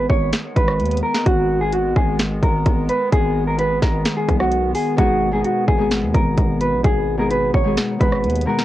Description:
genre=hip hop, trap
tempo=129 BPM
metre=4/4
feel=half-time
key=G# minor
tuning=A4 = 440 Hz
part: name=mellow electric guitar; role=melody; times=0.0-8.6 s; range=F#4 to C#5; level=-20 LUFS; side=right 1 dB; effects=cassette tape, tape echo
part: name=hollow soft pad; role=sustained chords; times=0.0-8.6 s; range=D#3 to B3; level=-26 LUFS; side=equal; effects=chorus, cassette tape
part: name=distorted 808-style bass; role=bass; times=0.0-8.5 s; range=G#1 to D#2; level=-22 LUFS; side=equal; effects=distortion
part: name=trap drum kit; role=drums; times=0.1-8.6 s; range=hi-hat, kick drum, rim click, snare drum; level=-19 LUFS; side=equal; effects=cassette tape
part: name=Celtic harp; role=accompaniment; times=5.0-8.6 s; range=B2 to B4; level=-22 LUFS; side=left 3 dB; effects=cassette tape
room=little or no reverb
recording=home recording on cassette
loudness=-16 LUFS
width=side -14 dB against mid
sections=0.0-8.6 A section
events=none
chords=0.0 G#m

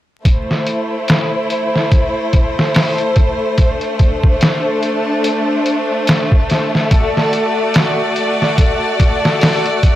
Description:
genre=trip hop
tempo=72 BPM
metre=4/4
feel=swing 57% on 16ths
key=A dorian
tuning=A4 = 443 Hz
part: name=rich studio violin section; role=sustained chords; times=0.2-10.0 s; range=A3 to D5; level=-17 LUFS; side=equal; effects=none
part: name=trip hop sampler-style drum kit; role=drums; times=0.3-10.0 s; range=hi-hat, kick drum, snare drum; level=-13 LUFS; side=equal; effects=low-pass filter on kick, low-pass filter on hats, low-pass filter on snare
part: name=backwards swelling texture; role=texture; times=1.4-10.0 s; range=A4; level=-24 LUFS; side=left 1 dB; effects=built-in reverb
room=digital ambience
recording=dry, gritty hardware recording, transformer saturation, vinyl crackle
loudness=-12 LUFS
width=side -13 dB against mid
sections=0.2-10.0 A section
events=none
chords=0.2 Am; 6.9 D/A

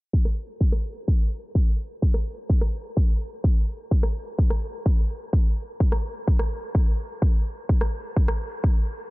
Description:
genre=EDM, festival progressive house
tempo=127 BPM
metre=4/4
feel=straight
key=none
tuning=none
part: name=electronic kick drum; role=drums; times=0.1-8.7 s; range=none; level=-20 LUFS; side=equal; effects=overdrive
part: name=electronic rim click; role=drums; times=0.3-8.4 s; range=none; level=-36 LUFS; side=equal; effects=overdrive, low-pass filter on snare
room=digital ambience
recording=low-pass filter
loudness=-22 LUFS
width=side -22 dB against mid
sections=0.1-9.1 A section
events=filter sweep on drum 0.1-9.1; filter sweep 0.1-9.1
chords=none

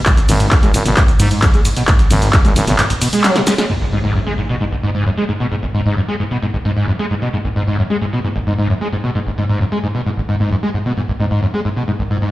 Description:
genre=driving peak-time techno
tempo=132 BPM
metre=4/4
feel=straight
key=G# minor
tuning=A4 = 438 Hz
part: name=screaming distorted acid line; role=riff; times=0.1-12.3 s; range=G#1 to G#3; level=-16 LUFS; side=equal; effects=distortion, ensemble chorus, vintage 12-bit sampler grit, sidechain pumping, tape echo
part: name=breakbeat sampler-style drum kit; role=drums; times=0.1-3.6 s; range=hi-hat, snare drum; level=-31 LUFS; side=equal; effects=none
part: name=electronic kick drum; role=drums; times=0.1-2.4 s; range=none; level=-13 LUFS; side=equal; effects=overdrive
part: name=punchy analog drum machine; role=drums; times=0.1-3.7 s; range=handclaps, hi-hat, ride cymbal, shaker, snare drum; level=-18 LUFS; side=equal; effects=sidechain pumping on hats, sidechain pumping on perc, sidechain pumping on cymbals
part: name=growling FM bass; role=bass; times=0.3-2.8 s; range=G#1 to G#2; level=-15 LUFS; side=equal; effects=tube saturation, sidechain pumping
part: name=impact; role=sound effects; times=3.7-5.5 s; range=none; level=-25 LUFS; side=equal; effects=none
room=moderate stone room reverb, RT60 0.9 s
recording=played on a big sound system in a bare room, stone room reverb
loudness=-14 LUFS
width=side -16 dB against mid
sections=0.0-3.7 A section; 3.7-12.3 B section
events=drop 0.0-3.7; kick drops out 2.8-3.7; drum fill 3.2-3.7; impact 3.7-5.5; filter sweep on acid bass 3.7-12.3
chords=none

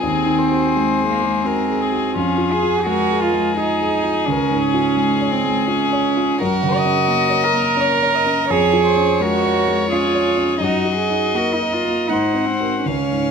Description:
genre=classical, slow romantic movement for piano quartet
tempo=84 BPM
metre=3/4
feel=rubato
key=Db major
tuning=A4 = 445 Hz
part: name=warm violin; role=melody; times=0.0-13.3 s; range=F4 to Eb5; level=-23 LUFS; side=left 10 dB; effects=none
part: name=rich cello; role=second line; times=0.0-13.3 s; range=Bb3 to Bb4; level=-19 LUFS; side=right 9 dB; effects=none
part: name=rich violin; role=second line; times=0.0-13.3 s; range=Ab4 to Gb5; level=-23 LUFS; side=left 5 dB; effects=none
part: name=warm concert grand piano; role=accompaniment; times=0.0-13.3 s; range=Db2 to Db5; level=-22 LUFS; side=left 2 dB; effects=none
room=moderate recital hall reverb, RT60 1.3 s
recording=close, detailed microphones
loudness=-15 LUFS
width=side -6 dB against mid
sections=0.0-13.3 A section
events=none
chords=0.0 Ab7/Eb; 2.2 Gbmaj13/F (rootless); 4.3 Db; 6.4 Gb; 8.5 Db/F; 10.6 Ebm/Gb; 12.1 Ab9

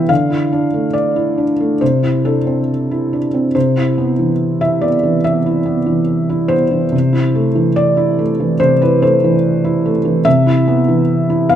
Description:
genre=neoclassical minimalist piano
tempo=71 BPM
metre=4/4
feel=rubato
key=C major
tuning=A4 = 440 Hz
part: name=felt-muted upright piano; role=solo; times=0.0-11.6 s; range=C3 to G5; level=-12 LUFS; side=equal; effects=none
room=moderate recital hall reverb, RT60 1.4 s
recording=close, detailed microphones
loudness=-12 LUFS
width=side -10 dB against mid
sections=0.0-3.5 A section; 3.5-11.6 A section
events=none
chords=0.1 Dmadd9; 1.8 Cadd9; 3.5 Cmaj7; 6.9 Am/C; 10.3 Cmaj7

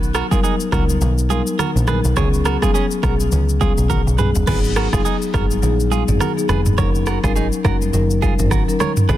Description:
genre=afrobeats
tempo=104 BPM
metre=4/4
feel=swing 58% on 16ths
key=F# major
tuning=A4 = 440 Hz
part: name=overdriven picked electric bass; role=bass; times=0.0-9.2 s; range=E#1 to C#2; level=-19 LUFS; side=equal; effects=none
part: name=afro-pop drum kit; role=drums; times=0.0-9.2 s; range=crash cymbal, kick drum, rim click, shaker, toms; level=-20 LUFS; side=equal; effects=soft clipping on snare
part: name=direct-recorded clean electric guitar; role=riff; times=0.1-9.2 s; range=C#4 to C#5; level=-24 LUFS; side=right 8 dB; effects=ping-pong delay
part: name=marimba with soft mallets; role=accompaniment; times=0.3-9.2 s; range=F#3 to A#4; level=-21 LUFS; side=left 4 dB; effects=none
part: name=congas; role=percussion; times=0.3-9.2 s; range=none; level=-28 LUFS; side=right 3 dB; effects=none
room=little or no reverb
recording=dense, heavily limited modern master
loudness=-15 LUFS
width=side -13 dB against mid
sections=0.0-4.5 A section; 4.5-9.2 B section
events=drum fill 3.9-4.5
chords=0.0 Bmaj7; 2.2 C#7sus4; 4.5 G#m7; 6.8 F#6

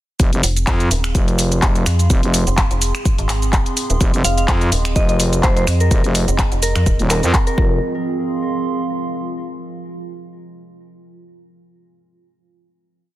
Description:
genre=bass house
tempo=126 BPM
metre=4/4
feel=swing 55% on 16ths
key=F minor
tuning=A4 = 438 Hz
part: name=deep dark ambient pad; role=sustained chords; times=3.0-7.8 s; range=Ab3 to F4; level=-33 LUFS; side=right 1 dB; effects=chorus, built-in reverb, sidechain pumping
part: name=growling FM bass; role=bass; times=0.2-7.8 s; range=Eb1 to F2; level=-18 LUFS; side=equal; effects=overdrive, sidechain pumping
part: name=electronic kick drum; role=drums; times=0.2-7.7 s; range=none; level=-17 LUFS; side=equal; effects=small room ambience
part: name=house drum kit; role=drums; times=0.2-7.6 s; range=cabasa, finger snaps, handclaps, hi-hat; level=-21 LUFS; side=equal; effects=small room ambience, soft clipping on snare
part: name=warbly tape-like pad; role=texture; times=0.2-9.7 s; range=C4 to C6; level=-26 LUFS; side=right 3 dB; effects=chorus, built-in reverb, sidechain pumping
part: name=metallic FM bass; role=bass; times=0.4-7.0 s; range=Eb1 to F2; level=-18 LUFS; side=equal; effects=overdrive, sidechain pumping
part: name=soft synth bell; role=melody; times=4.2-7.8 s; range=Bb4 to F5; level=-25 LUFS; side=left 1 dB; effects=chorus, vintage 12-bit sampler grit, tape echo
room=digital ambience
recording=dense, heavily limited modern master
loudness=-14 LUFS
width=side -15 dB against mid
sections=0.2-7.8 drop; 7.8-9.7 final chord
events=drop 0.2-7.8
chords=0.2 Fm

